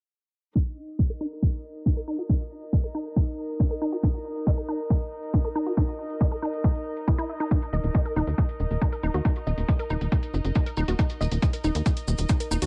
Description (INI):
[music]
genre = psychedelic trance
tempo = 138 BPM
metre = 4/4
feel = straight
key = unclear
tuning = A4 = 437 Hz
[part]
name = woody wave-folded pluck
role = riff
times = 0.6-12.7 s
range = Eb4 to Fb5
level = -34 LUFS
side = equal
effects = chorus, sidechain pumping, digital delay
[part]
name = electronic hi-hat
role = drums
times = 0.6-12.7 s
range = none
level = -44 LUFS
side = equal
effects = none
[part]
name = electronic kick drum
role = drums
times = 0.6-12.4 s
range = none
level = -25 LUFS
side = equal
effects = none
[part]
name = rich chamber string section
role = texture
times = 0.6-12.7 s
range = Eb4 to Eb5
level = -39 LUFS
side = equal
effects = sidechain pumping
[part]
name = maracas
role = percussion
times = 7.5-12.7 s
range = none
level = -43 LUFS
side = equal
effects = none
[part]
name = tight sequencer bass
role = bass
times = 7.7-12.7 s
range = Eb1 to Eb2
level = -28 LUFS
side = equal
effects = none
[sound]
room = little or no reverb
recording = low-pass filter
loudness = -26 LUFS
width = mono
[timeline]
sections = 0.6-12.7 A section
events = filter sweep on synth arpeggio sound 0.6-12.7; filter sweep 0.6-12.7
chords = 0.6 Eb5